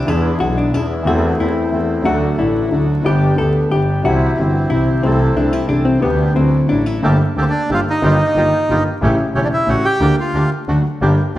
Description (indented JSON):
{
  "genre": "tango",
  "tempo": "181 BPM",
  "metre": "3/4",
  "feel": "rubato",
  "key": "G minor from 7.0 s",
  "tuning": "A4 = 440 Hz",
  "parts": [
    { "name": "hollow-body jazz guitar", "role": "second line", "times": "0.0-7.0 s", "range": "B3 to A4", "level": "-20 LUFS", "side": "left 3 dB", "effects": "none" },
    { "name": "warm concert grand piano", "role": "accompaniment", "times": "0.0-11.4 s", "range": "E1 to A4", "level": "-17 LUFS", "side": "equal", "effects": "none" },
    { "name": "bandoneon", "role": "stabs", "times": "0.0-11.4 s", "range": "G3 to A4", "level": "-25 LUFS", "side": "right 1 dB", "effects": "none" },
    { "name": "clear double bass", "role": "bass", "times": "0.0-11.4 s", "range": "E1 to E2", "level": "-19 LUFS", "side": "equal", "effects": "none" },
    { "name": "bandoneon", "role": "melody", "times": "7.4-11.4 s", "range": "C4 to G4", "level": "-18 LUFS", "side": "right 1 dB", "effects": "none" }
  ],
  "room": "wet large studio reverb, RT60 1.3 s",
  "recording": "vinyl crackle",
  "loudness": "-13 LUFS",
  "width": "side -14 dB against mid",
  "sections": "0.0-7.0 A section; 7.0-11.4 B section",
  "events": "none",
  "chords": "0.1 E7; 1.1 Am/E; 2.1 D; 3.1 G; 4.1 C; 5.0 Am/C; 6.0 G/D; 6.4 Dadd9; 7.0 Gmadd9; 8.0 Ebadd9/G; 9.0 A7; 10.0 Gm/D; 10.7 D",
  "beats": "| 0.08 0.41 0.74 | 1.07 1.40 1.73 | 2.05 2.38 2.72 | 3.05 3.39 3.72 | 4.05 4.38 4.71 | 5.04 5.37 5.69 | 6.02 6.35 6.69 | 7.03 7.36 7.70 | 8.03 8.36 8.69 | 9.02 9.35 9.68 | 10.01 10.34 10.68 | 11.02 11.35"
}